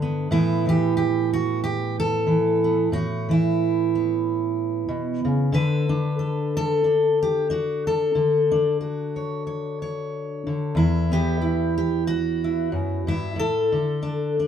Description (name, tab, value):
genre	folk, solo fingerstyle acoustic guitar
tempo	92 BPM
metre	4/4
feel	swing 55% on 8ths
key	A mixolydian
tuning	A4 = 445 Hz
part	fingerpicked steel-string acoustic guitar	solo	0.0-14.5 s	E2 to C#5	-20 LUFS	equal	none
room	moderate studio reverb, RT60 0.6 s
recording	band playing live in one room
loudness	-20 LUFS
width	side -8 dB against mid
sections	0.0-14.5 A section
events	none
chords	0.3 Asus2; 5.5 Dmaj7; 10.8 Emadd9; 13.4 Asus4